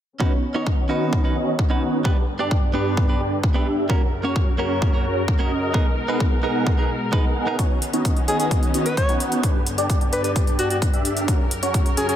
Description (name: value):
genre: EDM, festival progressive house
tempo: 130 BPM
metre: 4/4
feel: straight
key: B major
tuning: A4 = 442 Hz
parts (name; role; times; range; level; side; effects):
- direct-recorded clean electric guitar; accompaniment; 0.2-7.6 s; A#3 to D5; -28 LUFS; right 4 dB; sidechain pumping, dub echo
- clear studio string section; sustained chords; 0.2-12.2 s; F#2 to A#4; -29 LUFS; left 2 dB; sidechain pumping, low-pass filter
- big supersaw lead; riff; 0.2-12.2 s; B3 to F#5; -24 LUFS; right 1 dB; phaser, sidechain pumping, low-pass filter, dub echo
- electronic kick drum; drums; 0.2-11.8 s; none; -20 LUFS; equal; none
- electronic hi-hat; drums; 7.6-12.2 s; none; -29 LUFS; equal; none
- warm alto saxophone; melody; 8.3-12.2 s; F#4 to C#5; -26 LUFS; left 1 dB; dub echo
room: light reverb, digital ambience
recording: none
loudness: -18 LUFS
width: side -10 dB against mid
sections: 0.2-12.2 A section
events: filter sweep on string section 0.2-12.2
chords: 0.2 Badd9; 2.1 G; 3.9 F#; 5.7 G#madd9; 7.6 Badd9; 9.4 G; 11.3 F#